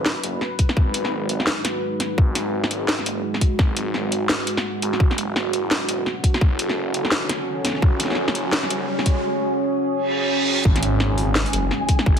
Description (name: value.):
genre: half-time drum and bass.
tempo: 170 BPM.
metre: 4/4.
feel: swing 59% on 16ths, half-time.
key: G# phrygian.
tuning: A4 = 440 Hz.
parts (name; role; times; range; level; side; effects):
deep dark ambient pad; sustained chords; 0.0-12.2 s; G#3 to B4; -24 LUFS; right 1 dB; chorus, built-in reverb, sidechain pumping.
phased detuned saw bass; bass; 0.0-12.2 s; E1 to B1; -26 LUFS; equal; phaser, high-pass filter.
drum and bass drum kit; drums; 0.1-12.2 s; hi-hat, snare drum; -24 LUFS; equal; none.
electronic kick drum; drums; 0.6-12.1 s; none; -17 LUFS; equal; none.
riser, reverse cymbal and impact; sound effects; 6.4-12.1 s; none; -28 LUFS; right 2 dB; none.
flickering grainy texture; texture; 11.1-12.2 s; G#3 to G#5; -29 LUFS; left 1 dB; built-in reverb.
room: moderate digital room reverb, RT60 1.1 s.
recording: heavily compressed radio sound.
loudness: -19 LUFS.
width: side -7 dB against mid.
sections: 0.0-10.6 A section; 10.6-12.2 B section.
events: build-up 0.0-10.6; riser 6.4-9.2; reverse cymbal 10.1-10.6; drop 10.6-12.2; impact 10.6-12.1.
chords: 0.0 G#m7; 5.0 F#m; 10.6 G#m7.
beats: 0.06 0.41 | 0.77 1.12 1.47 1.83 | 2.18 2.53 2.88 3.24 | 3.59 3.94 4.30 4.65 | 5.00 5.36 5.71 6.06 | 6.41 6.77 7.12 7.47 | 7.83 8.18 8.53 8.88 | 9.24 9.59 9.94 10.30 | 10.65 11.00 11.36 11.71 | 12.06.